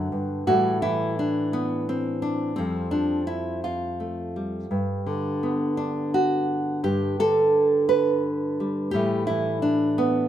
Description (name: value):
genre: folk, solo fingerstyle acoustic guitar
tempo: 57 BPM (dotted quarters)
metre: 6/8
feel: straight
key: unclear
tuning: A4 = 441 Hz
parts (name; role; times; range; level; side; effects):
- nylon-string guitar; solo; 0.0-10.3 s; F2 to B4; -22 LUFS; right 1 dB; none
room: moderate large studio reverb, RT60 1.3 s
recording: minimal, uncompressed stereo recording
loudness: -22 LUFS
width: side -11 dB against mid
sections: 0.0-10.3 A section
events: none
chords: 0.5 Am7; 2.6 Fadd9; 4.7 Gmaj7; 8.9 A5